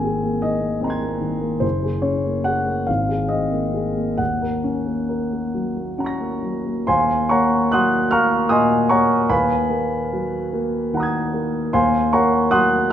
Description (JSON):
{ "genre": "classical, impressionist solo piano", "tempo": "44-51 BPM (dotted quarters)", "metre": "6/8", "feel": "rubato", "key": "Eb dorian", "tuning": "A4 = 440 Hz", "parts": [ { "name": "warm concert grand piano", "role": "solo", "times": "0.0-12.9 s", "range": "Gb1 to Bb6", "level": "-18 LUFS", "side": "equal", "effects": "none" } ], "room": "wet scoring stage reverb, RT60 1.7 s", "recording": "none", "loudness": "-18 LUFS", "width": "side -10 dB against mid", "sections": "0.0-6.9 A section; 6.9-12.9 A section", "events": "none", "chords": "0.0 Abadd9; 1.6 Gbadd9; 2.9 Abadd9; 4.2 Ebm7; 6.9 Ebm6; 9.3 Abm9/Eb; 11.7 Ebm7" }